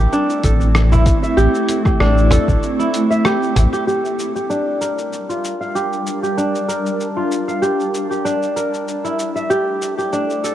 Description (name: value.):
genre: organic downtempo.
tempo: 96 BPM.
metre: 4/4.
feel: swing 54% on 16ths.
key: G dorian.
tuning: A4 = 439 Hz.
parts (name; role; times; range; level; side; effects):
granular cloud pad; sustained chords; 0.0-10.5 s; G3 to A5; -22 LUFS; equal; built-in reverb, sidechain pumping.
kora; arpeggios; 0.0-10.5 s; D4 to F5; -19 LUFS; equal; low-pass filter, ping-pong delay.
warm sub bass; bass; 0.0-3.7 s; A1; -14 LUFS; equal; sidechain pumping.
dusty soul sampler-style drum kit; drums; 0.1-10.5 s; hi-hat, rim click, shaker; -26 LUFS; equal; none.
electronic kick drum; drums; 0.4-2.6 s; none; -19 LUFS; equal; overdrive.
cajon; percussion; 0.9-3.8 s; none; -20 LUFS; right 1 dB; none.
room: light reverb.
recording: worn, warbling old tape, cassette tape, warbly pitch drift.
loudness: -15 LUFS.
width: side -12 dB against mid.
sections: 0.0-3.9 A section; 3.9-10.5 B section.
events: filter sweep on kora 3.9-10.5; filter sweep on ambient pad 3.9-10.5.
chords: 0.0 Am; 3.9 Gm7; 8.9 Am.